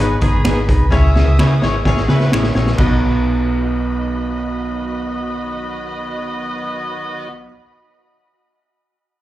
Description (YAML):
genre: uptempo 1960s-style soul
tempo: 128 BPM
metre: 4/4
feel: straight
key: B major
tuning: A4 = 437 Hz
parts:
  - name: dark studio string section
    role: second line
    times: 0.0-7.3 s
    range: F#4 to D#6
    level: -32 LUFS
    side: equal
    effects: tape echo, slapback echo
  - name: warm horn section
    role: second line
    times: 0.0-7.3 s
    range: D#3 to E5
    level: -27 LUFS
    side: equal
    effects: none
  - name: bright grand piano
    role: accompaniment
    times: 0.0-7.5 s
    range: B1 to E5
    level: -23 LUFS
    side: left 4 dB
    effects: none
  - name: tonewheel organ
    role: sustained chords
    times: 0.0-7.3 s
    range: D#3 to G#4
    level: -32 LUFS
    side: equal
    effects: fast rotary speaker, overdrive
  - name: hollow-body short-scale fingered electric bass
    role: bass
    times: 0.0-7.5 s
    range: F#1 to C#3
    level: -17 LUFS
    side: equal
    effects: none
  - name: raw garage drum kit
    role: drums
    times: 0.2-2.9 s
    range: crash cymbal, hi-hat, kick drum, snare drum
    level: -18 LUFS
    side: equal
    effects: none
  - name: electric guitar through a small old amp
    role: stabs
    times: 0.5-7.5 s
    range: F#3 to G#4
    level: -23 LUFS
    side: right 4 dB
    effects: none
  - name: finger snaps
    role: percussion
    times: 0.5-3.0 s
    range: none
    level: -27 LUFS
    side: right 2 dB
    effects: none
room: studio ambience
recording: live gig heard through the venue's PA, club reverb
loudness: -15 LUFS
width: side -14 dB against mid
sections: 0.0-2.8 A section; 2.8-6.5 B section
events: drum fill 0.9-2.8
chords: 0.0 G#m; 0.9 C#m; 2.8 B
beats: 0.46 | 0.92 1.39 1.86 2.33 | 2.79 3.26 3.73 4.20 | 4.66 5.13 5.59 6.06